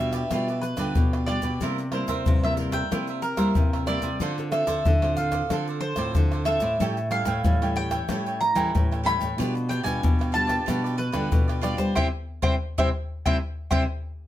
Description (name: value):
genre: samba and choro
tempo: 93 BPM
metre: 4/4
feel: straight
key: unclear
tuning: A4 = 442 Hz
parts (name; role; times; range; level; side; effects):
- mandolin; melody; 0.0-13.8 s; Bb4 to B5; -28 LUFS; right 1 dB; none
- cavaquinho; accompaniment; 0.0-13.8 s; E4 to G5; -33 LUFS; right 4 dB; none
- nylon-string guitar; accompaniment; 0.0-13.8 s; G2 to A4; -33 LUFS; left 1 dB; none
- nylon-string guitar; bass; 0.0-13.9 s; A2 to G3; -28 LUFS; right 1 dB; none
- egg shaker, surdo, pandeiro and tamborim; percussion; 0.1-13.9 s; none; -26 LUFS; left 1 dB; none
room: light reverb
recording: close, detailed microphones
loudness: -22 LUFS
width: side -13 dB against mid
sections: 0.0-14.3 A section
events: band accent 12.0-14.3; drum fill 13.6-14.3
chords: 0.0 G7/B; 1.6 C7; 4.2 Dm7; 6.8 A7; 9.4 G7/B; 12.0 C